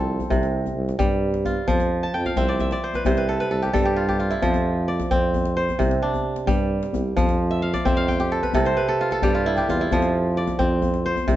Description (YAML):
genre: west african traditional, West African string and xylophone music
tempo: 88 BPM (dotted quarters)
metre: 12/8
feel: straight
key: F lydian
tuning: A4 = 440 Hz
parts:
  - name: kora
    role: arpeggios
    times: 0.0-11.4 s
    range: C3 to A5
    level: -22 LUFS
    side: right 2 dB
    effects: none
  - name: clear tuba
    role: bass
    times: 0.0-11.4 s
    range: C2 to G2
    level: -25 LUFS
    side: right 1 dB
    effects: none
  - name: djembe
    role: percussion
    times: 0.2-11.4 s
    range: none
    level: -26 LUFS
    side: left 3 dB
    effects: none
room: light reverb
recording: dark, warm production, nothing above 7.9 kHz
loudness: -19 LUFS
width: side -13 dB against mid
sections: 0.0-4.4 A section; 4.4-11.4 B section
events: kora fill 2.0-4.4, 7.5-9.9; drum fill 4.1-4.4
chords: 0.0 C5; 1.7 F5; 5.8 C5; 7.2 F5; 8.5 C; 9.9 F5